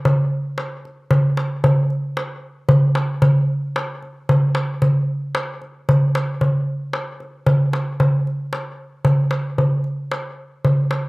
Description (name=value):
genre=arabic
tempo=113 BPM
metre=3/4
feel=straight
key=none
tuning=none
part: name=darbuka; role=percussion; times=0.1-11.0 s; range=none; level=-17 LUFS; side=equal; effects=none
room=light reverb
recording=recorded outdoors, with no room sound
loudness=-17 LUFS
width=side -24 dB against mid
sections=0.0-9.1 A section; 9.1-11.1 B section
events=none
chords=none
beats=0.04 0.57 | 1.10 1.63 2.16 | 2.69 3.23 3.76 | 4.29 4.82 5.35 | 5.88 6.41 6.93 | 7.46 7.99 8.52 | 9.05 9.58 10.11 | 10.64